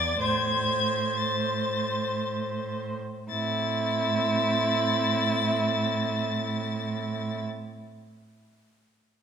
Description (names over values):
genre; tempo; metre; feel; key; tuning
classical, slow romantic movement for string quartet; 53-66 BPM; 3/4; rubato; A minor; A4 = 440 Hz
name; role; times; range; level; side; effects
muted violin; melody; 0.0-7.4 s; G#6 to A6; -31 LUFS; left 7 dB; none
muted violin; second line; 0.0-7.4 s; E4 to D5; -29 LUFS; left 1 dB; none
muted viola; accompaniment; 0.0-7.4 s; C4 to D5; -33 LUFS; right 2 dB; none
muted cello; bass; 0.0-7.4 s; E2 to A2; -31 LUFS; right 5 dB; none
room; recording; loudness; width
wet recital hall reverb, RT60 1.9 s; minimal, uncompressed stereo recording; -25 LUFS; side -8 dB against mid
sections
0.0-3.3 A section; 3.3-6.7 B section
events
slowing down 0.0-3.3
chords
0.2 Am